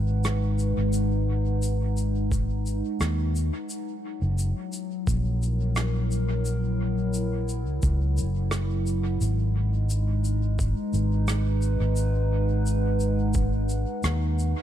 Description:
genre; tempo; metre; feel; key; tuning
ambient dub; 87 BPM; 4/4; straight; G# minor; A4 = 440 Hz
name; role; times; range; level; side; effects
warbly tape-like pad; sustained chords; 0.0-14.6 s; F#3 to F#5; -30 LUFS; left 1 dB; chorus, built-in reverb, vintage 12-bit sampler grit
fingered electric bass; bass; 0.0-14.5 s; F#1 to D#2; -24 LUFS; equal; none
shaker and rim click; drums; 0.2-14.5 s; none; -34 LUFS; right 1 dB; dub echo
electronic kick drum; drums; 2.3-13.5 s; none; -27 LUFS; equal; overdrive
room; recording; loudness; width
small room ambience; none; -23 LUFS; side -11 dB against mid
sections
0.0-14.6 A section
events
none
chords
0.0 G#m7; 3.7 F#7; 9.2 G#m7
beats
0.25 | 0.94 1.63 2.31 3.00 | 3.69 4.38 5.07 5.76 | 6.45 7.14 7.83 8.52 | 9.21 9.90 10.59 11.28 | 11.97 12.66 13.35 14.04

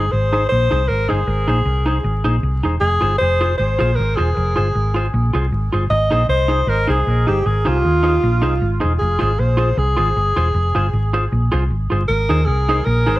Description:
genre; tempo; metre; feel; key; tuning
ska; 155 BPM; 4/4; swing 54% on 8ths; Ab major; A4 = 440 Hz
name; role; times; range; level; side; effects
breathy alto saxophone; melody; 0.0-13.2 s; F4 to Eb5; -20 LUFS; equal; dub echo
semi-hollow electric guitar; accompaniment; 0.0-13.2 s; Eb4 to C5; -23 LUFS; right 1 dB; dub echo
hollow-body short-scale fingered electric bass; bass; 0.0-13.2 s; Fb1 to Eb2; -18 LUFS; equal; none
room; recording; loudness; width
moderate club reverb, RT60 0.5 s; vinyl crackle, nothing above 10.9 kHz; -15 LUFS; side -17 dB against mid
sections
0.0-13.2 A section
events
none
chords
0.0 Ab; 2.8 Fm; 5.9 Ab; 9.0 Fm; 12.1 Ab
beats
0.11 0.50 0.88 | 1.27 1.66 2.04 2.43 | 2.81 3.20 3.59 3.97 | 4.36 4.75 5.13 5.52 | 5.91 6.29 6.68 7.06 | 7.45 7.84 8.22 8.61 | 9.00 9.38 9.77 10.15 | 10.54 10.93 11.31 11.70 | 12.09 12.47 12.86

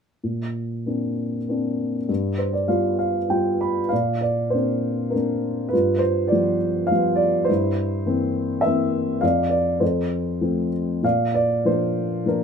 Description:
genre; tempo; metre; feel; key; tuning
classical, lyrical solo piano; 94-104 BPM; 3/4; rubato; Bb major; A4 = 440 Hz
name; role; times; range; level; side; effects
dark upright piano; solo; 0.2-12.4 s; F2 to B5; -20 LUFS; equal; none
room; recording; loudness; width
light reverb; minimal, uncompressed stereo recording; -20 LUFS; side -6 dB against mid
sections
0.2-3.9 A section; 3.9-12.4 B section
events
upright piano fill 2.1-3.9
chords
0.2 Bbadd9; 2.1 G7; 3.9 Bbadd9; 5.7 G7; 7.5 C7/G; 9.2 Dm/F; 9.8 F; 11.0 Bb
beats
| 0.24 0.88 1.50 | 2.09 2.68 3.28 | 3.91 4.53 5.13 | 5.73 6.31 6.91 | 7.49 8.07 8.65 | 9.23 9.82 10.42 | 11.04 11.66 12.28

